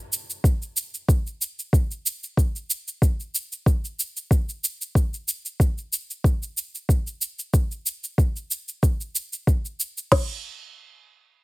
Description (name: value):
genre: organic downtempo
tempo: 93 BPM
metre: 4/4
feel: swing 53% on 16ths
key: none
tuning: none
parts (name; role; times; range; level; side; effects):
- shaker; drums; 0.1-10.1 s; none; -27 LUFS; right 2 dB; none
- organic electronic drum kit; drums; 0.4-10.3 s; crash cymbal, kick drum, snare drum; -19 LUFS; equal; none
room: little or no reverb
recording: none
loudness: -22 LUFS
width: side -22 dB against mid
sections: 0.0-10.1 A section; 10.1-11.4 B section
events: none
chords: none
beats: 0.44 1.08 1.73 | 2.38 3.02 3.67 4.31 | 4.96 5.60 6.25 6.89 | 7.54 8.18 8.83 9.47 | 10.12